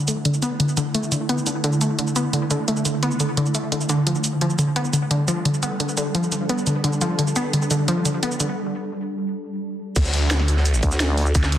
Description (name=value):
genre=dark technical drum and bass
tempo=173 BPM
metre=4/4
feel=straight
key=unclear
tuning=A4 = 437 Hz
part: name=swarming drone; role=sustained chords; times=0.0-9.9 s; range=D3 to A4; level=-26 LUFS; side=right 2 dB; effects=built-in reverb, sidechain pumping
part: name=wide unison pluck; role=arpeggios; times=0.1-8.5 s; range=D3 to B3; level=-22 LUFS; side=left 1 dB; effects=sidechain pumping, tape echo
part: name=drum and bass drum kit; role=drums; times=0.1-11.6 s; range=crash cymbal, hi-hat, shaker, snare drum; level=-26 LUFS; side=right 1 dB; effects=small room ambience
part: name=phased detuned saw bass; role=bass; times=10.0-11.6 s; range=D2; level=-19 LUFS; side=equal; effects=phaser, tube saturation, sidechain pumping
part: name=crunchy breakbeat drum kit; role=drums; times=10.0-11.6 s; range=hi-hat, snare drum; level=-33 LUFS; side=equal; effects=high-pass filter on hats, small room ambience, high-pass filter on snare, high-pass filter on room
part: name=electronic kick drum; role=drums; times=10.0-11.4 s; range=none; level=-20 LUFS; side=equal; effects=small room ambience
part: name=vowel-sweep wobble bass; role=bass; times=10.8-11.3 s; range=D2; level=-20 LUFS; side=equal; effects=chorus
room=moderate plate reverb, RT60 1.9 s, digital ambience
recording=dense, heavily limited modern master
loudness=-19 LUFS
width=side -11 dB against mid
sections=0.0-10.0 A section; 10.0-11.6 B section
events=filter sweep on synth arpeggio sound 0.0-10.0; break 8.6-10.0; drop 10.0-11.6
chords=0.0 D5; 4.4 Gsus2; 10.0 N.C.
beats=| 0.25 0.60 0.94 1.29 | 1.64 1.99 2.33 2.68 | 3.03 3.37 3.72 4.07 | 4.41 4.76 5.11 5.45 | 5.80 6.15 6.50 6.84 | 7.19 7.54 7.88 8.23 | 8.58 8.92 9.27 9.62 | 9.96 10.31 10.66 11.00 | 11.35